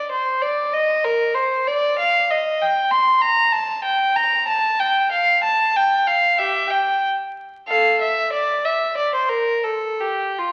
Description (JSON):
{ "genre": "classical, baroque-style suite movement for unaccompanied violin", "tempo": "94 BPM", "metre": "4/4", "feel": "rubato", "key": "F major", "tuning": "A4 = 439 Hz", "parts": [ { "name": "rich violin", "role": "solo", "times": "0.0-10.5 s", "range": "F4 to C6", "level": "-19 LUFS", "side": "equal", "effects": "none" } ], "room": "wet recital hall reverb, RT60 1.5 s", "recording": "very old 78 rpm record, vinyl crackle", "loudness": "-19 LUFS", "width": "mono", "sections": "0.0-10.5 A section", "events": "none", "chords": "none" }